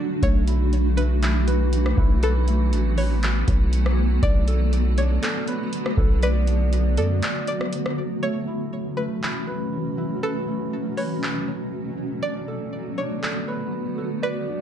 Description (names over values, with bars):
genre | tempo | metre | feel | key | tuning
hip hop, atmospheric cloud-rap | 120 BPM | 4/4 | half-time | unclear | A4 = 440 Hz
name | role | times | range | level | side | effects
string-like resonator pluck | melody | 0.0-14.6 s | A4 to D5 | -30 LUFS | equal | chorus, digital delay
granular cloud pad | sustained chords | 0.0-14.6 s | B2 to F#4 | -26 LUFS | equal | built-in reverb, sidechain pumping
Celtic harp | arpeggios | 0.0-14.6 s | A3 to D5 | -32 LUFS | right 2 dB | digital delay
long sustained 808-style bass | bass | 0.2-7.2 s | A1 to F#2 | -20 LUFS | equal | none
booming analog drum machine | drums | 0.2-13.3 s | handclaps, hi-hat, kick drum, rim click | -25 LUFS | equal | none
room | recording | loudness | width
light reverb, digital ambience | dark, warm production | -20 LUFS | side -10 dB against mid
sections
0.0-8.2 A section; 8.2-14.6 B section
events
break 0.0, 7.2-8.2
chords
0.2 F#m7/B; 4.2 Bm7; 8.2 F#m7/B; 12.2 Bm7